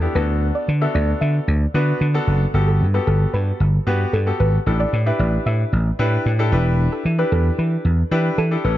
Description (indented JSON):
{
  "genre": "dance-pop",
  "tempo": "113 BPM",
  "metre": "4/4",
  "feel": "straight",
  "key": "unclear",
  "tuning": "A4 = 440 Hz",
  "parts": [
    { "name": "clear concert grand piano", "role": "accompaniment", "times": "0.0-8.8 s", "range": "B3 to B4", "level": "-24 LUFS", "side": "left 1 dB", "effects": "none" },
    { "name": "vintage slap bass", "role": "bass", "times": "0.0-8.8 s", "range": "E1 to E3", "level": "-18 LUFS", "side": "equal", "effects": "none" },
    { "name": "soft round pluck", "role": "melody", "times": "0.2-8.8 s", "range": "A4 to E5", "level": "-27 LUFS", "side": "left 1 dB", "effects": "chorus, ping-pong delay" }
  ],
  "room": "light reverb, small room ambience",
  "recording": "dark, warm production, nothing above 7.6 kHz",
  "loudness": "-16 LUFS",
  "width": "side -14 dB against mid",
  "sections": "0.0-8.8 A section",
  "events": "none",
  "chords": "0.2 D6; 2.5 Gmaj9; 4.7 A7sus4; 6.5 Em7"
}